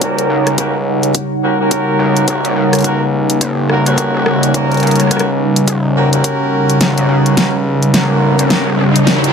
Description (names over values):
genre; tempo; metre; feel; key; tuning
glitch hop; 106 BPM; 4/4; swing 60% on 16ths; unclear; A4 = 439 Hz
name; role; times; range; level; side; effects
warm analog pad; sustained chords; 0.0-9.3 s; Db3 to F#5; -16 LUFS; equal; wide subtle chorus, sidechain pumping
mellow horn section; stabs; 0.0-9.3 s; Bb3 to Bb4; -18 LUFS; equal; sidechain pumping, low-pass filter, ping-pong delay
gritty driven synth bass; bass; 0.0-9.3 s; Eb1 to Db2; -20 LUFS; left 1 dB; distortion, overdrive, high-pass filter
electronic kick drum; drums; 0.0-9.2 s; none; -24 LUFS; left 1 dB; none
pop drum kit; drums; 0.0-9.3 s; hi-hat, rim click, snare drum; -17 LUFS; left 1 dB; none
warbly tape-like pad; texture; 0.0-9.3 s; G3 to F#5; -18 LUFS; right 1 dB; chorus, built-in reverb, sidechain pumping
riser; sound effects; 7.8-9.3 s; none; -20 LUFS; left 1 dB; none
room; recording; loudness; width
light reverb; none; -11 LUFS; side -6 dB against mid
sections
0.0-9.3 A section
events
build-up 0.0-9.3; filter sweep on analog synth pad 0.0-9.3; drum fill 6.8-9.3; riser 7.8-9.3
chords
0.0 Eb7#9